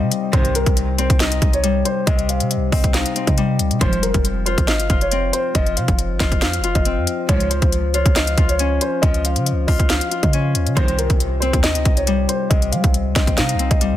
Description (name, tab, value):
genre	hip hop, trap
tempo	138 BPM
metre	4/4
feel	half-time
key	unclear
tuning	A4 = 440 Hz
part	dark concert grand piano	melody	0.0-14.0 s	Bb4 to F5	-24 LUFS	right 1 dB	tape echo
part	Celtic harp	accompaniment	0.0-14.0 s	C3 to F5	-23 LUFS	left 7 dB	none
part	clean 808-style bass	bass	0.0-14.0 s	F1 to G3	-21 LUFS	right 1 dB	none
part	trap drum kit	drums	0.1-13.9 s	hi-hat, kick drum, snare drum	-18 LUFS	equal	none
part	warm symphonic string section	stabs	0.3-0.6, 3.8-4.1, 7.3-7.6, 10.8-11.1 s	C2 to F3	-28 LUFS	right 3 dB	tape echo
room	studio ambience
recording	dense, heavily limited modern master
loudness	-16 LUFS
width	side -12 dB against mid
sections	0.0-10.8 A section; 10.8-14.0 A section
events	none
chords	0.0 Cm; 3.8 Fm; 7.3 Db; 10.8 Cm